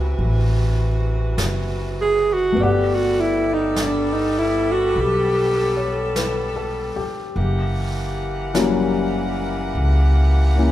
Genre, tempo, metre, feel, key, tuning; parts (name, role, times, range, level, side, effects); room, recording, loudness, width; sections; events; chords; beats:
jazz ballad; 50 BPM; 4/4; swing 68% on 8ths; A4 = 440 Hz
warm grand piano; accompaniment; 0.0-10.7 s; F#3 to F#5; -24 LUFS; left 4 dB
warm saxophone section; sustained chords; 0.0-10.7 s; C3 to F#5; -26 LUFS; left 1 dB
upright bass; bass; 0.0-10.7 s; F#1 to C#2; -21 LUFS; equal
jazz brush drum kit; drums; 0.2-10.7 s; brushed snare drum, hi-hat, snare drum; -32 LUFS; equal
breathy alto saxophone; melody; 2.0-6.2 s; D4 to G#4; -19 LUFS; right 1 dB
light reverb; -18 LUFS; side -13 dB against mid
0.0-10.7 A section
alto saxophone solo 0.0-10.7
0.0 D13 (rootless); 2.6 Gmaj9; 7.4 F#7b9
0.19 1.39 | 2.58 3.77 4.97 6.17 | 7.36 8.56 9.76